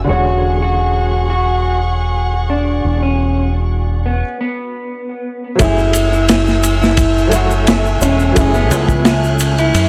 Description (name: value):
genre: trip hop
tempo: 87 BPM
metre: 4/4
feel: swing 53% on 16ths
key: F# minor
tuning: A4 = 436 Hz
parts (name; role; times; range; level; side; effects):
- warm upright piano; accompaniment; 0.0-9.9 s; D3 to C#5; -23 LUFS; equal; tremolo
- dark chamber violin section; sustained chords; 0.0-9.9 s; A3 to F#6; -26 LUFS; equal; none
- deep dub fingered electric bass; bass; 0.0-9.9 s; E1 to F#2; -18 LUFS; equal; none
- wind-like tuned noise texture; texture; 0.0-4.2 s; F#4; -36 LUFS; equal; none
- electric guitar at the edge of break-up; melody; 0.1-9.9 s; B3 to F#4; -21 LUFS; equal; vintage 12-bit sampler grit, tape echo
- crunchy breakbeat drum kit; drums; 5.6-9.9 s; kick drum, ride cymbal, snare drum; -19 LUFS; equal; none
- tube shaker; percussion; 5.6-9.9 s; none; -30 LUFS; equal; none
room: small room ambience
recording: dry, gritty hardware recording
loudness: -15 LUFS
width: mono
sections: 0.0-5.6 A section; 5.6-9.9 B section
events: break 4.2-5.6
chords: 0.1 E13; 5.6 F#m9